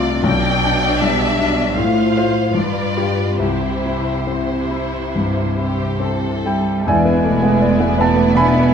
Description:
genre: classical, romantic movement for piano and orchestra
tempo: 67-81 BPM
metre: 4/4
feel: rubato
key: C major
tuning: A4 = 442 Hz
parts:
  - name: clear concert grand piano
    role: melody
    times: 0.0-8.7 s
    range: B1 to B5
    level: -17 LUFS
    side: left 2 dB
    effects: none
  - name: warm symphonic violin section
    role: melody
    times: 0.0-8.7 s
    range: C5 to G5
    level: -24 LUFS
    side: left 2 dB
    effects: none
  - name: warm symphonic violin section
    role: second line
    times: 0.0-8.7 s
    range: D4 to D5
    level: -25 LUFS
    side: left 2 dB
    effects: none
  - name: warm studio cello section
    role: bass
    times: 0.0-8.7 s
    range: G2 to B3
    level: -22 LUFS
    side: right 5 dB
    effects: none
  - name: warm symphonic viola section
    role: accompaniment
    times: 6.9-8.7 s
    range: B3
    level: -23 LUFS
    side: right 3 dB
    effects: none
  - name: mellow French horn section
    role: sustained chords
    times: 6.9-8.7 s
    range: B3 to D4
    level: -26 LUFS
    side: right 1 dB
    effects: none
  - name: rich symphonic double bass section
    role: bass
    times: 6.9-8.7 s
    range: E1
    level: -22 LUFS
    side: right 6 dB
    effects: none
room: moderate concert hall reverb, RT60 1.8 s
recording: close, detailed microphones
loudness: -15 LUFS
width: side -7 dB against mid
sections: 0.0-6.9 A section; 6.9-8.7 B section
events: none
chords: 0.2 G/B; 1.8 F/A; 2.5 G7; 3.4 C; 6.9 E7

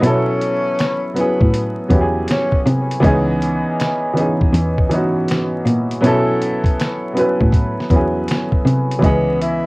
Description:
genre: lo-fi hip hop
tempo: 80 BPM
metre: 4/4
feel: swing 66% on 16ths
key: unclear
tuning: A4 = 440 Hz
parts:
  - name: breathy tenor saxophone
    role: melody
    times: 0.0-2.6, 9.0-9.7 s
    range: B3 to E4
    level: -21 LUFS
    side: left 1 dB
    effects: cassette tape, analog delay
  - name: warm upright piano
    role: accompaniment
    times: 0.0-9.7 s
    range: E3 to D#5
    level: -18 LUFS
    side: equal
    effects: cassette tape
  - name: dark cello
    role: bass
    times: 0.0-9.6 s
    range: C#2 to B#2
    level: -18 LUFS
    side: equal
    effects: none
  - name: dusty soul sampler-style drum kit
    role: drums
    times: 0.0-9.6 s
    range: finger snaps, hi-hat, kick drum, snare drum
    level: -18 LUFS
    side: equal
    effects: none
room: light reverb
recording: home recording on cassette, vinyl crackle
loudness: -14 LUFS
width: side -24 dB against mid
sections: 0.0-9.7 A section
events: none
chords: 0.0 B9sus4; 3.0 C#m9; 6.0 B9sus4; 9.0 C#m9

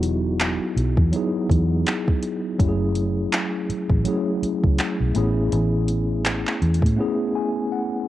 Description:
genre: contemporary R&B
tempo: 82 BPM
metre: 4/4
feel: swing 58% on 16ths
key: E major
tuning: A4 = 440 Hz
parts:
  - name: mellow tine electric piano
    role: accompaniment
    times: 0.0-8.1 s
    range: F#3 to G#5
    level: -23 LUFS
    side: equal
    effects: medium stereo tremolo, cassette tape
  - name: vintage muted fingered electric bass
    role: bass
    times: 0.0-7.0 s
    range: E1 to A2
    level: -22 LUFS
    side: equal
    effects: none
  - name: smooth R&B drum kit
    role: drums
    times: 0.0-7.0 s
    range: handclaps, hi-hat, kick drum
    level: -22 LUFS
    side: equal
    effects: overdrive, cassette tape
room: little or no reverb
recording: home recording on cassette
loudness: -20 LUFS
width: side -14 dB against mid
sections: 0.0-8.1 A section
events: break 7.0-8.1; tine electric piano fill 7.0-8.1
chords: 0.0 Emaj7; 2.6 F#m9; 5.2 Amaj7

